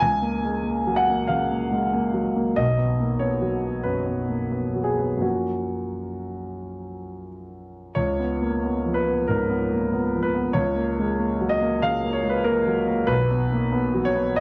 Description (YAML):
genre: neoclassical minimalist piano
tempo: 85-97 BPM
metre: 4/4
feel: rubato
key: F# major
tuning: A4 = 440 Hz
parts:
  - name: warm grand piano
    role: solo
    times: 0.0-14.4 s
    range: B1 to G#5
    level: -24 LUFS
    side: equal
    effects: none
room: moderate studio reverb, RT60 0.6 s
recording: dark, warm production, lossy compression artefacts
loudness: -24 LUFS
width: mono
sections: 0.0-8.0 A section; 8.0-14.4 A section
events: none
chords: 0.0 F#maj7/C#; 2.6 B; 5.2 F#maj7; 8.0 C#7; 10.6 F#/C#; 13.1 B5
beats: | 0.03 0.67 1.31 1.96 | 2.60 3.24 3.88 4.54 | 5.23 5.93 6.62 7.29 | 7.97 8.64 9.29 9.93 | 10.57 11.21 11.85 12.48 | 13.11 13.74 14.38